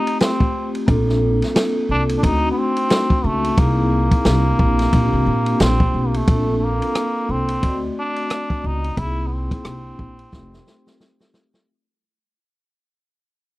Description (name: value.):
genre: hip hop, jazz-hop.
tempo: 89 BPM.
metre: 4/4.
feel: swing 60% on 16ths.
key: Bb major.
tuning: A4 = 440 Hz.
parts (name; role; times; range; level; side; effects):
trombone with metal mute; melody; 0.0-11.3 s; A3 to E4; -23 LUFS; equal; none.
vibraphone with soft mallets; accompaniment; 0.0-11.6 s; A3 to Eb5; -23 LUFS; left 1 dB; none.
open jazz drum kit; drums; 0.1-11.7 s; hi-hat, kick drum, ride cymbal, rim click, snare drum; -19 LUFS; equal; none.
upright bass; bass; 0.9-10.6 s; F1 to Bb2; -20 LUFS; equal; none.
room: small room ambience.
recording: dry, close 1970s-style studio recording.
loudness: -16 LUFS.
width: side -18 dB against mid.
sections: 0.0-6.3 A section; 6.3-11.7 B section.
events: fade-out 6.3-11.7; drum fill 10.3-11.7.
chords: 0.0 Fadd9; 0.9 Bbmaj9; 2.2 D7b9; 3.6 C7alt; 4.2 C7; 4.9 Bb69; 6.3 Bbmaj9; 7.6 D7b9; 9.0 C7alt; 9.6 C7; 10.3 F9.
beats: 0.20 | 0.88 1.55 2.23 2.90 | 3.58 4.25 4.92 5.60 | 6.27 6.95 7.62 8.29 | 8.97 9.64 10.32 10.99.